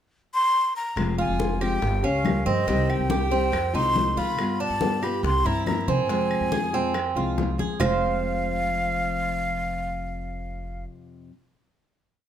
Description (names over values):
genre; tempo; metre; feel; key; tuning
latin, Cuban son and guajira; 140 BPM; 4/4; straight; F minor; A4 = 440 Hz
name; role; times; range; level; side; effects
breathy jazz flute; melody; 0.3-10.8 s; Eb5 to C6; -27 LUFS; left 1 dB; none
nylon-string guitar; accompaniment; 1.0-11.3 s; F2 to G4; -29 LUFS; left 3 dB; none
upright bass; bass; 1.0-10.8 s; F1 to F3; -29 LUFS; equal; none
bongos; percussion; 1.0-7.9 s; none; -34 LUFS; left 5 dB; none
claves; percussion; 1.0-7.9 s; none; -38 LUFS; right 1 dB; none
congas; percussion; 1.0-7.9 s; none; -31 LUFS; left 3 dB; none
Cuban tres; arpeggios; 1.2-10.8 s; C4 to F5; -28 LUFS; right 7 dB; none
room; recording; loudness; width
moderate studio reverb, RT60 0.8 s; none; -22 LUFS; side -9 dB against mid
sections
0.0-1.0 pickup bar; 1.0-7.8 A section; 7.8-11.2 final chord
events
none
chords
0.0 N.C.; 1.0 Fm; 1.8 Gdim; 2.7 Cm; 3.5 Fm7; 4.4 G7; 5.2 C7; 6.1 Fm